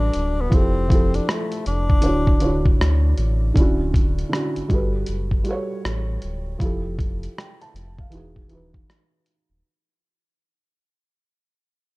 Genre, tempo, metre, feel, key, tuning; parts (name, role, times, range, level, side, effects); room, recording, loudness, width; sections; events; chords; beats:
lo-fi hip hop; 79 BPM; 4/4; swing 62% on 16ths; D major; A4 = 440 Hz
breathy tenor saxophone; melody; 0.0-2.8 s; A3 to D4; -26 LUFS; left 2 dB
felt-muted upright piano; accompaniment; 0.0-9.7 s; D3 to A5; -26 LUFS; right 1 dB; cassette tape
sub bass with octave; bass; 0.0-9.6 s; D1 to D2; -23 LUFS; equal
dusty soul sampler-style drum kit; drums; 0.1-9.5 s; hi-hat, kick drum, rim click; -20 LUFS; equal; vintage 12-bit sampler grit
little or no reverb; dark, warm production; -18 LUFS; side -23 dB against mid
0.0-3.6 A section; 3.6-9.6 B section
fade-out 3.6-9.6
0.0 Gmaj9; 0.5 Fmaj9; 2.0 Dmaj9; 4.7 Gmaj9; 6.6 Fmaj9; 8.1 Emaj9
| 0.52 1.28 2.04 2.80 | 3.56 4.32 5.08 5.84 | 6.60 7.36 8.12 8.88